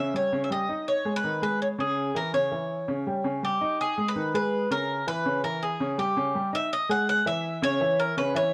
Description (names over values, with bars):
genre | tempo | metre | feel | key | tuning
latin | 164 BPM | 4/4 | straight | unclear | A4 = 440 Hz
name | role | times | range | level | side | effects
Cuban tres | melody | 0.0-8.5 s | G4 to F#5 | -29 LUFS | equal | none
clear baby grand piano | accompaniment | 0.0-8.5 s | C#3 to G#5 | -31 LUFS | equal | none
room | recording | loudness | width
moderate spring reverb, RT60 1.8 s, small room ambience | cassette tape | -27 LUFS | mono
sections
0.0-6.7 A section; 6.7-8.5 B section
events
none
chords
0.1 D#7; 0.9 G#5; 1.6 C#m6; 2.3 C#m; 3.1 D#7; 3.8 G#5; 4.5 A#m7b5; 5.3 C#m7; 6.0 D#7; 6.7 Emaj9; 7.4 C#m